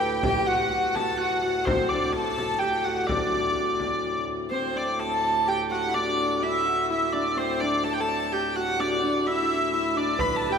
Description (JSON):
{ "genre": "medieval dance", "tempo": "126 BPM", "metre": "3/4", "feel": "straight", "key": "D mixolydian", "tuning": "A4 = 440 Hz", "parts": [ { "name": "clear hurdy-gurdy", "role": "melody", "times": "0.0-10.6 s", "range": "C5 to B5", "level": "-25 LUFS", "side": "equal", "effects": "none" }, { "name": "Celtic harp", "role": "second line", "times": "0.0-10.6 s", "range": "C4 to B4", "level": "-30 LUFS", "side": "right 1 dB", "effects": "none" }, { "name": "dark fiddle", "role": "second line", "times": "0.0-10.6 s", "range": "C4 to B4", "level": "-32 LUFS", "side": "left 4 dB", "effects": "none" }, { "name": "hand-pumped harmonium", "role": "drone", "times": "0.0-10.6 s", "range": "D2 to A2", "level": "-35 LUFS", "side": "equal", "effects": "none" }, { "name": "frame drum", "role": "percussion", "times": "0.2-4.0, 10.2-10.4 s", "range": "none", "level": "-33 LUFS", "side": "left 1 dB", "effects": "none" } ], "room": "wet church reverb, RT60 2.9 s", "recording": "minimal, uncompressed stereo recording", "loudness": "-23 LUFS", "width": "side -6 dB against mid", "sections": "0.0-4.5 A section; 4.5-10.6 A section", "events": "none", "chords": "none" }